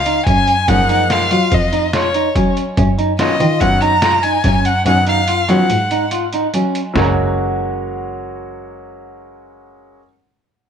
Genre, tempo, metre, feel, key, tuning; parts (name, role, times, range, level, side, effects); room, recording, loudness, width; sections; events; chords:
progressive instrumental, band music in an uneven meter; 144 BPM; 5/4; straight; F# major; A4 = 440 Hz
rich violin; melody; 0.0-6.1 s; C#5 to A#5; -16 LUFS; left 1 dB; plate reverb, ping-pong delay
muted double bass; bass; 0.0-10.0 s; F#1 to F#3; -18 LUFS; equal
electric guitar at the edge of break-up; arpeggios; 0.1-10.1 s; E#3 to F#5; -20 LUFS; right 1 dB; spring reverb
trip hop sampler-style drum kit; drums; 0.1-7.1 s; hi-hat, kick drum, snare drum, toms; -20 LUFS; right 1 dB
clear concert grand piano; accompaniment; 0.7-10.0 s; D#3 to D#4; -23 LUFS; left 2 dB
moderate studio reverb, RT60 0.6 s; -13 LUFS; side -8 dB against mid
0.0-7.0 A section; 7.0-10.7 B section
kick and snare drop out 4.9-7.0
0.0 F#maj7; 2.8 Badd9/F#; 7.0 F#